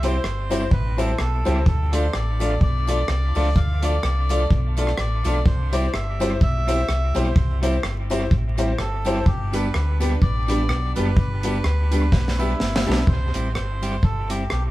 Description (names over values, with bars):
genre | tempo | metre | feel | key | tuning
ska | 126 BPM | 4/4 | swing 57% on 8ths | C major | A4 = 441 Hz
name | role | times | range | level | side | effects
melodica | melody | 0.0-14.6 s | E4 to F5 | -30 LUFS | equal | dub echo
clean electric guitar | accompaniment | 0.0-14.4 s | F3 to G4 | -29 LUFS | right 1 dB | dub echo
tack piano | stabs | 0.0-13.0 s | D4 to D5 | -26 LUFS | left 2 dB | none
fingered electric bass | bass | 0.0-14.7 s | F#1 to D2 | -22 LUFS | equal | none
deep reggae drum kit | drums | 0.0-14.6 s | hi-hat, kick drum, rim click, snare drum | -23 LUFS | equal | dub echo
tambourine | percussion | 0.0-14.4 s | none | -43 LUFS | left 3 dB | none
room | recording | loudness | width
moderate studio reverb, RT60 0.6 s | band playing live in one room, vinyl crackle | -19 LUFS | side -17 dB against mid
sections
0.0-13.1 A section; 13.1-14.7 B section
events
drum fill 12.1-13.1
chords
0.0 C; 1.7 Dm; 5.5 C; 9.3 G; 13.1 C